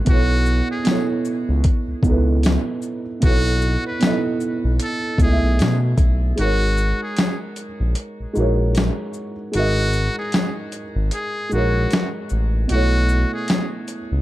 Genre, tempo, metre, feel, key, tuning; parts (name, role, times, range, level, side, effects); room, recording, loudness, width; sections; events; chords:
lo-fi hip hop; 76 BPM; 4/4; swing 57% on 16ths; G# phrygian; A4 = 440 Hz
felt-muted upright piano; accompaniment; 0.0-14.2 s; B2 to E5; -24 LUFS; right 2 dB; cassette tape
trumpet with metal mute; melody; 0.1-13.7 s; F#4 to B4; -26 LUFS; left 1 dB; tape echo
smooth synth bass; bass; 0.1-14.2 s; G#1 to B2; -19 LUFS; equal
dusty soul sampler-style drum kit; drums; 0.1-14.1 s; hi-hat, kick drum, shaker, snare drum; -20 LUFS; equal; overdrive
tambourine; percussion; 0.9-13.7 s; -41 LUFS; left 6 dB
light reverb, small room ambience; tape saturation; -17 LUFS; side -16 dB against mid
0.0-6.4 A section; 6.4-14.2 B section
break 6.4-14.2
0.1 B9sus4; 6.4 G#9sus4; 12.7 B9sus4